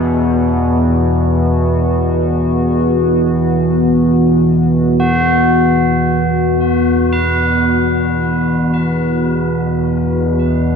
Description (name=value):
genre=dark ambient drone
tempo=free time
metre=none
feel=none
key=unclear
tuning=A4 = 436 Hz
part: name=dark analog pad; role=sustained chords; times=0.0-10.8 s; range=E3 to B4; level=-16 LUFS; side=equal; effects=chorus, phaser
part: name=tubular bells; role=arpeggios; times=0.0-10.8 s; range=D#4 to B4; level=-19 LUFS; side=left 1 dB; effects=ping-pong delay
part: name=analog drone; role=drone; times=0.0-10.8 s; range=E2 to B2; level=-15 LUFS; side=equal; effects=chorus, phaser
room=wet cathedral reverb, RT60 6.1 s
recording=none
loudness=-12 LUFS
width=side -6 dB against mid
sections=0.0-10.8 A section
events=none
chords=0.0 B/E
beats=free time